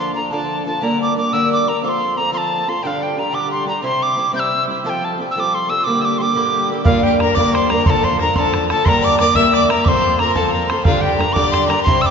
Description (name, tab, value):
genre	celtic folk, Celtic jig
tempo	120 BPM (dotted quarters)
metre	6/8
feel	straight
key	G dorian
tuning	A4 = 439 Hz
part	tin whistle	melody	0.0-12.1 s	F5 to G6	-18 LUFS	equal	none
part	fingerpicked twelve-string acoustic guitar	accompaniment	0.0-12.1 s	G2 to C5	-19 LUFS	equal	none
part	rich fiddle	second line	6.9-12.1 s	F4 to E5	-21 LUFS	left 5 dB	none
part	bodhran	percussion	6.9-12.1 s	none	-19 LUFS	right 1 dB	none
room	wet church reverb, RT60 3.2 s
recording	recorded in a church or concert hall, nothing above 7.6 kHz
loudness	-14 LUFS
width	side -6 dB against mid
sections	0.0-6.9 A section; 6.9-12.1 A section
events	none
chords	0.0 Dm; 0.8 Gm; 1.8 F; 2.8 Gsus2; 3.8 C; 4.8 Fadd9; 5.9 Gmadd9; 6.9 Gm; 7.9 Dm; 8.9 Gm; 9.9 F; 10.9 Gsus2